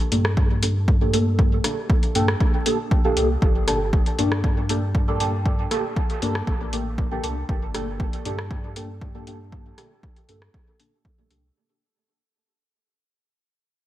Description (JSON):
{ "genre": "dub techno", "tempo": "118 BPM", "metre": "4/4", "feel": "straight", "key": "G minor", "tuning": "A4 = 440 Hz", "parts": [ { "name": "deep mellow chord stab", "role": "stabs", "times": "0.1-11.4 s", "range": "Bb3 to A4", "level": "-25 LUFS", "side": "equal", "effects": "chorus, phaser, sidechain pumping, dub echo" }, { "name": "warm sub bass", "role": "bass", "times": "0.1-11.5 s", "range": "G1 to G2", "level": "-26 LUFS", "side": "equal", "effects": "sidechain pumping" }, { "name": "soft vintage rhythm box", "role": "drums", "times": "0.1-11.4 s", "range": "hi-hat, rim click", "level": "-28 LUFS", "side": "left 1 dB", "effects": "gated reverb, dub echo" }, { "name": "electronic kick drum", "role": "drums", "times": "0.4-11.2 s", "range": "none", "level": "-21 LUFS", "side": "equal", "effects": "none" } ], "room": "light reverb, digital ambience", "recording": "bright 1980s-style digital production, vinyl crackle", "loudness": "-20 LUFS", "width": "side -14 dB against mid", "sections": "0.0-11.6 A section", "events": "fade-out 3.4-11.6", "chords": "0.0 Gmadd9" }